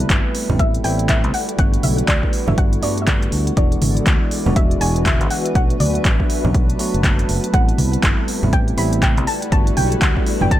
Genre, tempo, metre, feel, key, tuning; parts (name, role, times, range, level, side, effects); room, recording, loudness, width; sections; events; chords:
deep house; 121 BPM; 4/4; swing 60% on 16ths; A dorian; A4 = 440 Hz
soft round pluck; melody; 0.0-10.6 s; D5 to B5; -25 LUFS; equal; wide subtle chorus, cassette tape, ping-pong delay
warm analog pad; sustained chords; 0.0-10.6 s; G3 to D5; -29 LUFS; equal; chorus, sidechain pumping
tine electric piano; stabs; 0.0-10.6 s; E3 to F#4; -24 LUFS; equal; sidechain pumping, low-pass filter, tape echo
fingered electric bass; bass; 0.0-10.6 s; E1 to G2; -21 LUFS; equal; tube saturation, sidechain pumping
deep house drum kit; drums; 0.0-10.6 s; handclaps, hi-hat; -24 LUFS; equal
granular cloud pad; texture; 0.0-10.6 s; E4 to A5; -28 LUFS; left 1 dB; built-in reverb, sidechain pumping
electronic kick drum; drums; 0.1-10.6 s; -18 LUFS; equal
congas; percussion; 0.5-10.5 s; -23 LUFS; right 1 dB
little or no reverb; -15 LUFS; side -13 dB against mid
0.0-10.6 A section
0.0 Am9; 1.3 Gmaj9; 3.6 E9; 5.6 Bm7; 7.5 Am9; 9.3 Gmaj9